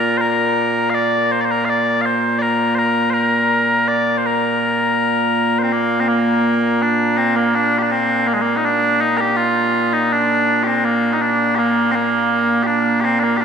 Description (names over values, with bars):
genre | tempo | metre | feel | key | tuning
scottish traditional, Scottish pipe music | 82 BPM | 2/4 | straight | Bb major | A4 = 442 Hz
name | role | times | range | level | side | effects
mellow small bagpipes | solo | 0.0-13.4 s | Bb2 to F5 | -14 LUFS | equal | none
room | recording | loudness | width
wet cathedral reverb, RT60 6.0 s | recorded in a church or concert hall | -14 LUFS | side -7 dB against mid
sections
0.0-5.7 A section; 5.7-13.4 A section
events
none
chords
none